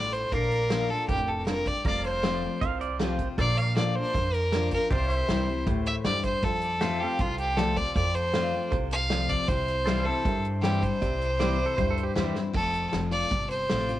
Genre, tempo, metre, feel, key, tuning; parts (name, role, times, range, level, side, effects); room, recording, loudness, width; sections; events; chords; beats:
honky-tonk and classic country; 157 BPM; 4/4; straight; F major; A4 = 439 Hz
bright fiddle; melody; 0.0-14.0 s; F4 to F5; -28 LUFS; equal; cassette tape, analog delay
picked steel-string acoustic guitar; accompaniment; 0.0-14.0 s; F2 to F4; -31 LUFS; left 5 dB; cassette tape
upright bass; bass; 0.0-14.0 s; F1 to G2; -31 LUFS; right 1 dB
natural country drum kit; drums; 0.1-14.0 s; crash cymbal, hi-hat, kick drum, snare drum; -32 LUFS; right 1 dB; cassette tape
warm upright piano; accompaniment; 0.3-12.4 s; C4 to D5; -38 LUFS; right 9 dB; cassette tape
pedal steel guitar; sustained chords; 0.3-12.5 s; G4 to F5; -39 LUFS; equal; cassette tape
pedal steel guitar; second line; 2.6-3.3, 11.4-12.3 s; G4 to F5; -35 LUFS; right 7 dB; cassette tape
light reverb, small room ambience; home recording on cassette; -24 LUFS; side -14 dB against mid
0.3-12.5 A section; 12.5-14.0 B section
drum fill 12.4
0.3 Bb; 1.8 F; 3.4 Bb; 4.9 C; 6.4 F; 9.5 C; 12.5 F
| 0.32 0.70 1.08 1.47 | 1.85 2.23 2.61 2.99 | 3.38 3.76 4.14 4.52 | 4.90 5.29 5.67 6.05 | 6.43 6.81 7.20 7.58 | 7.96 8.34 8.72 9.10 | 9.49 9.87 10.25 10.63 | 11.02 11.40 11.78 12.16 | 12.55 12.93 13.31 13.70